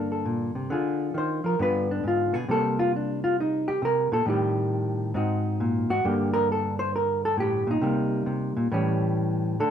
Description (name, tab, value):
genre	solo jazz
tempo	135 BPM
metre	4/4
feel	swing 67% on 8ths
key	unclear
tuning	A4 = 441 Hz
part	hollow-body jazz guitar	solo	0.0-9.7 s	G2 to C5	-23 LUFS	equal	none
room	light reverb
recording	none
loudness	-23 LUFS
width	side -8 dB against mid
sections	0.0-9.6 A section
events	hollow-body jazz guitar solo 0.0-9.6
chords	0.0 Gmadd9; 0.7 Ddim; 1.6 G7b9; 2.5 C5; 4.3 Am7b5; 5.1 Ab9; 6.0 Gmadd9; 7.8 Cm7; 8.7 A7